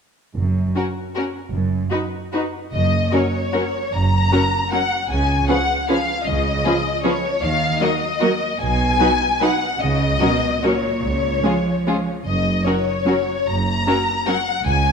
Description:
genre	classical, orchestral ballroom waltz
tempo	139-167 BPM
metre	3/4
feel	rubato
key	F# major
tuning	A4 = 440 Hz
part	clear studio cello section	bass	0.4-14.9 s	C#2 to E#3	-25 LUFS	right 2 dB	none
part	rich studio double bass section	bass	0.4-14.9 s	F#1 to D#2	-24 LUFS	right 3 dB	none
part	rich studio violin section	melody	0.8-14.9 s	A#4 to A#5	-21 LUFS	left 4 dB	none
part	warm studio violin section	second line	0.8-14.3 s	E#4 to B4	-27 LUFS	left 4 dB	none
part	warm studio viola section	accompaniment	0.8-14.4 s	E#3 to D#4	-23 LUFS	right 1 dB	none
room	moderate scoring stage reverb, RT60 1.6 s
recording	none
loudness	-17 LUFS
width	side -6 dB against mid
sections	0.4-2.7 A section; 2.7-14.9 B section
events	none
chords	0.4 F#5; 1.5 B/F# (rootless); 2.7 F#; 5.1 C#; 7.4 D#m; 8.6 B; 9.8 F#/C#; 11.0 C#; 12.3 F#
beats	| 0.36 0.75 1.15 | 1.53 1.91 2.33 | 2.73 3.13 3.54 | 3.94 4.33 4.73 | 5.11 5.49 5.89 | 6.26 6.65 7.05 | 7.42 7.81 8.21 | 8.61 9.00 9.41 | 9.80 10.21 10.63 | 11.03 11.43 11.86 | 12.26 12.65 13.06 | 13.47 13.86 14.26 | 14.64

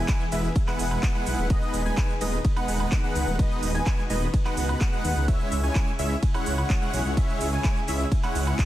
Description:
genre	EDM, festival progressive house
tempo	127 BPM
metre	4/4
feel	straight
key	unclear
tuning	A4 = 439 Hz
part	warm studio string section	sustained chords	0.0-8.7 s	C#3 to B4	-35 LUFS	left 2 dB	sidechain pumping
part	wide unison lead	arpeggios	0.0-8.7 s	D#5 to G#5	-33 LUFS	equal	analog chorus, sidechain pumping, dub echo
part	dense compressed supersaw	riff	0.0-8.7 s	G#3 to G#5	-30 LUFS	right 1 dB	sidechain pumping, dub echo
part	detuned saw bass	bass	0.0-8.5 s	D#1 to D#2	-27 LUFS	equal	sidechain pumping
part	big-room dance drum kit	drums	0.1-8.7 s	cabasa, handclaps, hi-hat, ride cymbal, woodblock	-34 LUFS	right 2 dB	overdrive
part	electronic kick drum	drums	0.1-8.7 s	none	-24 LUFS	equal	none
room	digital ambience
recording	dense, heavily limited modern master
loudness	-22 LUFS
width	side -14 dB against mid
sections	0.0-8.7 A section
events	none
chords	0.0 E; 1.5 G#m/D#; 5.3 C#m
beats	0.09 0.56 1.03 | 1.50 1.98 2.45 2.92 | 3.39 3.86 4.34 4.81 | 5.28 5.75 6.23 6.70 | 7.17 7.64 8.12 8.59

